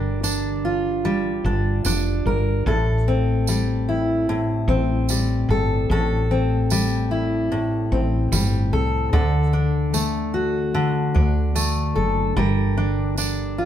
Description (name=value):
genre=acoustic pop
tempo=74 BPM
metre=4/4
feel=swing 60% on 16ths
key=unclear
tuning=A4 = 441 Hz
part: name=fingerpicked steel-string acoustic guitar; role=accompaniment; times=0.0-13.7 s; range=A2 to Bb4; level=-21 LUFS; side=left 1 dB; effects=none
part: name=woody fretless electric bass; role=bass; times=0.0-13.7 s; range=F1 to D2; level=-22 LUFS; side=equal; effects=none
part: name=tambourine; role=percussion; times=0.2-13.4 s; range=none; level=-28 LUFS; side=right 6 dB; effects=none
room=wet studio reverb, RT60 0.7 s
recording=band playing live in one room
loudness=-19 LUFS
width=side -10 dB against mid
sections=0.0-13.7 A section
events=none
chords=0.0 Gm7; 2.7 Am7; 9.1 D; 12.4 Gm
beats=0.24 1.05 1.85 | 2.66 3.47 4.28 5.09 | 5.90 6.70 7.51 8.32 | 9.13 9.94 10.74 11.55 | 12.36 13.17